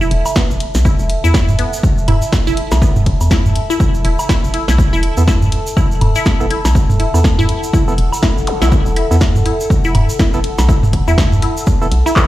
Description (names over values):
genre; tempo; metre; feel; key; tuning
minimal techno; 122 BPM; 4/4; swing 59% on 16ths; unclear; A4 = 440 Hz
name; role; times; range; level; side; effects
resonant blip pluck; riff; 0.0-12.2 s; B3 to B4; -22 LUFS; left 1 dB; phaser, sidechain pumping, digital delay
tube shaker; percussion; 0.0-12.3 s; none; -30 LUFS; right 2 dB; none
warbly tape-like pad; texture; 0.0-12.3 s; A4 to A5; -24 LUFS; equal; chorus, built-in reverb, sidechain pumping
hollow knocking FM bass; bass; 0.1-12.0 s; E1 to E2; -15 LUFS; equal; sidechain pumping
punchy analog drum machine; drums; 0.1-12.3 s; handclaps, hi-hat, snare drum; -20 LUFS; equal; none
electronic woodblock and toms; percussion; 0.3-12.1 s; none; -18 LUFS; right 1 dB; none
electronic kick drum; drums; 0.4-12.3 s; none; -15 LUFS; equal; overdrive
percussive organ stab; stabs; 5.2-11.9 s; B3 to A4; -24 LUFS; right 4 dB; chorus, dub echo
zap; sound effects; 8.5-8.6 s; none; -24 LUFS; equal; none
room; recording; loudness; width
light reverb; played on a big sound system in a bare room, stone room reverb; -11 LUFS; side -15 dB against mid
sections
0.0-12.3 A section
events
none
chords
0.0 Esus4